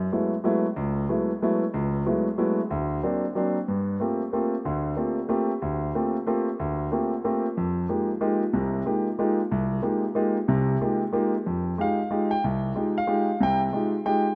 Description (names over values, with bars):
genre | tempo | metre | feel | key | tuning
jazz | 185 BPM | 3/4 | swing 61% on 8ths | unclear | A4 = 445 Hz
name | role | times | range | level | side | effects
warm concert grand piano | solo | 0.0-14.3 s | C2 to G5 | -26 LUFS | equal | none
room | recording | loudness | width
moderate lush hall reverb, RT60 2.8 s | rough home demo mix | -26 LUFS | mono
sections
0.0-3.7 A section; 3.7-11.4 B section; 11.4-14.3 C section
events
none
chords
0.0 F#m11; 2.7 Daug7; 3.7 Gm11; 7.6 Fm11; 11.4 Fm9